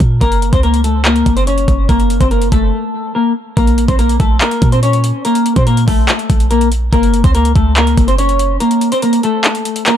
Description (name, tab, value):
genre	hip hop, trap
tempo	143 BPM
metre	4/4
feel	half-time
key	Bb harmonic minor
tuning	A4 = 440 Hz
part	clean 808-style bass	bass	0.0-8.6 s	Gb1 to Bb2	-14 LUFS	right 1 dB	none
part	trap drum kit	drums	0.0-10.0 s	handclaps, hi-hat, kick drum	-15 LUFS	equal	overdrive
part	semi-hollow electric guitar	melody	0.2-10.0 s	A3 to Db5	-14 LUFS	left 2 dB	lush chorus, low-pass filter, digital delay
room	little or no reverb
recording	dark, warm production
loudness	-10 LUFS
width	side -10 dB against mid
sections	0.0-3.6 A section; 3.6-10.0 B section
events	break 2.7-3.6, 8.6-10.0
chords	0.2 Gb; 3.6 Bbm; 6.9 Gb